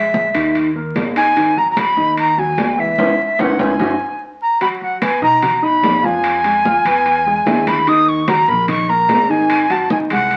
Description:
Afro-Cuban jazz; 147 BPM; 4/4; straight; G# minor, B major from 4.6 s; A4 = 440 Hz
breathy bright jazz flute; melody; 0.0-10.4 s; E5 to D#6; -17 LUFS; equal
warm grand piano; accompaniment; 0.0-10.4 s; D3 to F#6; -22 LUFS; equal
upright bass; bass; 0.0-10.4 s; F#1 to B2; -30 LUFS; equal
congas; percussion; 0.1-10.4 s; -28 LUFS; equal
timbales; percussion; 0.1-10.4 s; -25 LUFS; equal
moderate studio reverb, RT60 0.7 s; very old 78 rpm record, vinyl crackle; -15 LUFS; mono
0.0-4.6 A section; 4.6-10.4 B section
band accent 3.0-4.6; drum fill 3.8-4.6
0.0 A#7(b5, no3); 0.5 D#5; 1.4 G#m7; 3.0 C#m7; 3.8 F#sus2; 4.6 B; 6.2 Fdim; 7.1 E7; 7.9 D#m; 9.5 G#7
0.14 0.55 0.95 | 1.36 1.76 2.17 2.58 | 2.98 3.39 3.80 4.20 | 4.61 5.02 5.42 5.83 | 6.24 6.65 7.05 7.46 | 7.87 8.28 8.68 9.09 | 9.50 9.90 10.31

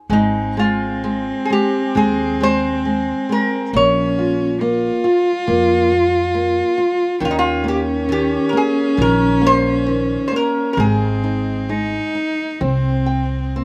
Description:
fado-style ballad; 67 BPM; 4/4; uneven beats, rubato; Ab major; A4 = 445 Hz
flamenco guitar; accompaniment; 0.0-13.6 s; Eb3 to G5; -23 LUFS; equal
lap resonator guitar; melody; 0.1-13.5 s; Eb4 to Db5; -22 LUFS; equal; slapback echo
dark cello; second line; 0.1-13.6 s; Bb3 to F4; -22 LUFS; equal
upright bass; bass; 0.1-13.6 s; Ab1 to F2; -25 LUFS; equal
little or no reverb; recorded outdoors, with no room sound; -18 LUFS; mono
0.1-13.6 A section
0.1 Ab; 3.7 Bbm; 7.2 Eb5; 10.8 Ab; 12.6 C5
| 0.10 1.03 1.96 2.85 | 3.74 4.61 5.48 6.35 | 7.21 8.09 8.97 9.87 | 10.77 11.69 12.61 13.56

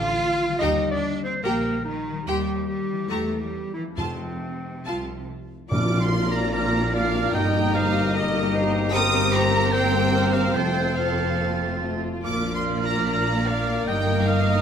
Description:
classical, dramatic, fast romantic movement for symphony orchestra; 133-154 BPM; 4/4; rubato; Bb major; A4 = 436 Hz
warm clarinet; second line; 0.0-14.6 s; C4 to F5; -30 LUFS; left 1 dB
concert harp; arpeggios; 0.0-14.6 s; F2 to Eb5; -31 LUFS; left 11 dB
clear symphonic cello section; bass; 0.0-14.6 s; F2 to F4; -29 LUFS; right 3 dB
rich symphonic double bass section; bass; 0.0-14.6 s; F1 to F2; -30 LUFS; right 3 dB
clear symphonic violin section; melody; 0.6-14.6 s; Eb5 to Eb6; -29 LUFS; equal
rich symphonic violin section; second line; 0.6-14.6 s; A4 to Bb5; -32 LUFS; left 2 dB
rich symphonic viola section; accompaniment; 0.6-14.6 s; Bb3 to G4; -31 LUFS; right 1 dB
timpani; percussion; 4.0-6.3 s; F2 to Bb2; -30 LUFS; right 1 dB
small flute group; second line; 5.7-14.6 s; Bb5 to A6; -31 LUFS; right 5 dB
warm oboe; second line; 5.7-14.6 s; Eb5 to Eb6; -30 LUFS; right 2 dB
warm bassoon; accompaniment; 5.7-14.6 s; Bb3 to Eb4; -32 LUFS; right 2 dB
warm French horn section; sustained chords; 5.7-14.6 s; A3 to F4; -30 LUFS; left 4 dB
tam-tam; percussion; 5.7-7.3 s; -34 LUFS; left 3 dB
moderate scoring stage reverb, RT60 1.7 s; -21 LUFS; side -8 dB against mid
0.0-5.7 A section; 5.7-14.6 B section
band accent 5.7-6.1
0.0 Dm; 0.6 Eb; 2.3 Cm/Eb; 3.1 Edim7; 4.0 F; 5.7 Bb; 7.3 Eb/G; 8.9 Cm7/G; 10.6 F; 12.2 Bb; 13.9 Eb/G
0.20 | 0.61 1.03 1.44 1.86 | 2.27 2.68 3.10 3.52 | 3.97 4.41 4.85 5.29 | 5.72 6.13 6.54 6.94 | 7.35 7.75 8.15 8.55 | 8.94 9.33 9.73 10.14 | 10.56 10.98 11.40 11.82 | 12.24 12.65 13.06 13.47 | 13.88 14.28

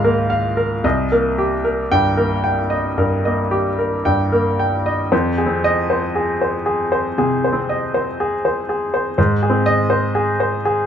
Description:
neoclassical minimalist piano; 56-61 BPM; 4/4; rubato; F minor; A4 = 437 Hz
clear baby grand piano; solo; 0.0-10.9 s; C2 to G5; -16 LUFS; equal
light reverb; band playing live in one room; -16 LUFS; side -8 dB against mid
0.0-5.1 A section; 5.1-10.9 B section
0.0 Db6; 0.8 Cm7; 5.1 Fm7; 9.2 Ab
| 0.84 1.91 2.98 4.05 | 5.12 6.15 7.16 8.18 | 9.17 10.16

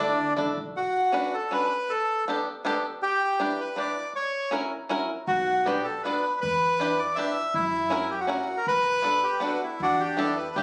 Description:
musette waltz; 160 BPM; 3/4; rubato; B minor; A4 = 440 Hz
bandoneon; melody; 0.0-10.6 s; D4 to E5; -27 LUFS; equal
bluegrass banjo; accompaniment; 0.0-10.6 s; B3 to B4; -31 LUFS; equal
upright bass; bass; 0.0-0.7, 5.3-10.6 s; B1 to F#2; -42 LUFS; equal
moderate studio reverb, RT60 0.8 s; recorded on a phone in the room, club reverb, compression; -26 LUFS; mono
0.8-9.8 A section
0.0 Dadd9; 0.8 Bmadd9; 1.9 Gadd9; 3.0 Em7; 4.1 F#7; 5.3 Bm; 6.4 Em7; 7.5 F#7; 8.7 Bm7; 9.8 Em7
0.00 0.38 | 0.77 1.15 1.53 | 1.90 2.28 2.65 | 3.02 3.40 3.77 | 4.14 4.52 4.90 | 5.28 5.67 6.05 | 6.42 6.80 7.17 | 7.54 7.91 8.28 | 8.66 9.03 9.42 | 9.80 10.18 10.56

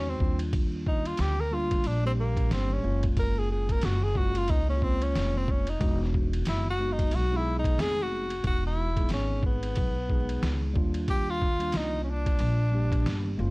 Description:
hip hop, jazz-hop; 91 BPM; 4/4; swing 59% on 16ths; A4 = 440 Hz
breathy tenor saxophone; melody; 0.0-13.4 s; A#3 to A#4; -31 LUFS; equal
mellow tine electric piano; accompaniment; 0.0-13.5 s; G3 to G#4; -35 LUFS; equal; medium stereo tremolo
upright bass; bass; 0.0-13.5 s; E1 to E2; -29 LUFS; equal; transformer saturation
trip hop sampler-style drum kit; drums; 0.2-13.2 s; hi-hat, kick drum, ride cymbal, snare drum; -30 LUFS; equal
little or no reverb; dry, gritty hardware recording, vinyl crackle; -25 LUFS; side -25 dB against mid
0.0-8.4 A section; 8.4-13.5 B section
tenor saxophone solo 0.0-8.4
0.2 D#maj9; 2.8 F#maj9; 5.8 Emaj9; 10.8 D#maj9
| 0.53 1.19 1.85 2.51 | 3.17 3.83 4.49 5.15 | 5.80 6.46 7.12 7.78 | 8.44 9.10 9.76 10.42 | 11.08 11.74 12.40 13.06

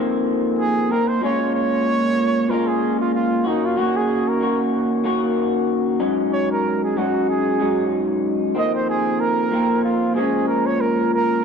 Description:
indie pop; 94 BPM; 4/4; swing 55% on 16ths; Bb minor; A4 = 440 Hz
electric guitar through a small old amp; accompaniment; 0.0-11.4 s; F2 to Gb4; -19 LUFS; left 1 dB; wide subtle chorus, vibrato effect
trumpet with bucket mute; melody; 0.6-11.4 s; Eb4 to Eb5; -22 LUFS; right 4 dB; analog chorus, analog delay
moderate spring reverb, RT60 1.1 s, studio ambience; dark, warm production; -18 LUFS; side -6 dB against mid
0.0-11.4 A section
muted trumpet solo 0.0-11.4
0.0 F7sus4; 1.2 Bbm7; 3.5 Ebm7; 6.0 Ab7sus4; 8.6 F7sus4; 10.2 Bbm7
0.59 | 1.23 1.86 2.50 3.14 | 3.78 4.41 5.05 5.69 | 6.33 6.96 7.60 8.24 | 8.88 9.52 10.15 10.79 | 11.43

